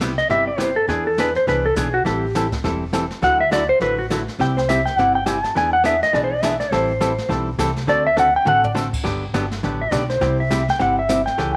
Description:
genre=country, western swing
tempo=206 BPM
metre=4/4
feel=swing 60% on 8ths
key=unclear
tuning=A4 = 440 Hz
part: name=hollow-body jazz guitar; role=accompaniment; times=0.0-11.6 s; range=C3 to A4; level=-26 LUFS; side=equal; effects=none
part: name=upright bass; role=bass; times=0.0-11.6 s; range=E1 to E2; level=-29 LUFS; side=equal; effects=none
part: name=jazz brush drum kit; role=drums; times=0.0-11.6 s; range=brushed snare drum, crash cymbal, hi-hat, kick drum, snare drum, toms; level=-32 LUFS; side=equal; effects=none
part: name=clean lap steel guitar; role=melody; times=0.2-11.5 s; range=F#4 to A5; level=-21 LUFS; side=equal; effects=none
room=moderate echo chamber reverb, RT60 1.4 s, small room ambience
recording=none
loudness=-19 LUFS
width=mono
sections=0.0-9.0 A section; 9.0-11.6 A section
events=electric slide guitar solo 0.0-9.0, 9.0-11.6; drum fill 8.2-8.8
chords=0.0 Cmaj7; 0.9 E7; 2.1 Am7; 3.2 Dadd9; 4.4 C; 5.6 E7; 6.7 Am7; 7.9 D7; 9.0 Gmaj7; 10.2 C

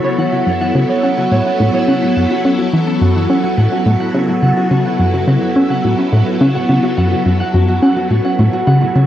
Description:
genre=ambient, sequencer-driven space music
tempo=106 BPM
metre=4/4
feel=straight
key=F# minor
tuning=A4 = 440 Hz
part: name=phased string machine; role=sustained chords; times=0.0-9.1 s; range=F#3 to A4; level=-17 LUFS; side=left 1 dB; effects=ensemble chorus, phaser, shimmer reverb
part: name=Celtic harp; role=arpeggios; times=0.0-9.1 s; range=E4 to F#5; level=-18 LUFS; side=right 1 dB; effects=auto-pan, low-pass filter, tape echo, shimmer reverb
part: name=plucky analog bass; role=riff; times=0.2-9.1 s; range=F#2 to C#4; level=-14 LUFS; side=equal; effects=tape echo
room=wet spring reverb, RT60 1.4 s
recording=home recording on cassette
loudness=-12 LUFS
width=side -12 dB against mid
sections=0.0-9.1 A section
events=filter sweep on analog synth bass 0.0-9.1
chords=0.0 F#m

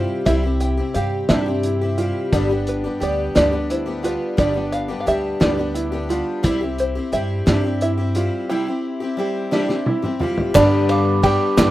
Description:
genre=indie folk with a building arrangement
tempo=58 BPM (dotted quarters)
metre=6/8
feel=straight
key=G mixolydian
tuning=A4 = 440 Hz
part: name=open-back banjo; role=melody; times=0.0-11.7 s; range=B4 to G5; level=-23 LUFS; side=equal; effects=none
part: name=fingerpicked plugged-in steel-string acoustic guitar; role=accompaniment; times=0.0-4.4 s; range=C3 to G4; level=-30 LUFS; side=left 1 dB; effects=none
part: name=picked twelve-string acoustic guitar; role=accompaniment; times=0.0-11.7 s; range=G2 to G4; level=-24 LUFS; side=left 4 dB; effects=none
part: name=warm upright piano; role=arpeggios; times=0.0-11.7 s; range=D4 to G4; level=-24 LUFS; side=right 4 dB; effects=slapback echo
part: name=upright bass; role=bass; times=0.0-11.7 s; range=G1 to G2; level=-23 LUFS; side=equal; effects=none
part: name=cloth-damped thuddy drum kit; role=drums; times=0.3-11.7 s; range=hi-hat, kick drum, ride cymbal, snare drum, toms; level=-21 LUFS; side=equal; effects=none
part: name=clear baby grand piano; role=accompaniment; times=10.5-11.7 s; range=none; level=barely audible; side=none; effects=none
part: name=group handclap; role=percussion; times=10.5-11.7 s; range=none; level=-29 LUFS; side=right 2 dB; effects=none
part: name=glockenspiel with rubber mallets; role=second line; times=10.6-11.7 s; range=B5 to D6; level=-23 LUFS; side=right 3 dB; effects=none
part: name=egg shaker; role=percussion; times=10.6-11.7 s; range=none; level=-40 LUFS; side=left 2 dB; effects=none
room=studio ambience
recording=rough home demo mix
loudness=-17 LUFS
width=side -15 dB against mid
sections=0.0-10.6 A section; 10.6-11.7 B section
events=drum fill 9.5-10.6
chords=0.0 C; 2.3 G; 6.4 C; 10.6 G

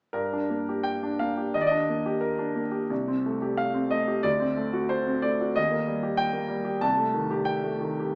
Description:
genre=classical, romantic character piece for solo piano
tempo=82-97 BPM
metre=2/4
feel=rubato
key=G minor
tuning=A4 = 440 Hz
part: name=warm concert grand piano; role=solo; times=0.1-8.2 s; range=C2 to A5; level=-27 LUFS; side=equal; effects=none
room=wet recital hall reverb, RT60 1.8 s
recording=small speaker sound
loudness=-27 LUFS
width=mono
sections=0.1-8.2 A section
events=none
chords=0.1 Gm; 1.5 Ebmaj7; 2.9 Cm6; 4.2 D7; 5.6 Eb; 6.8 Am7b5/C

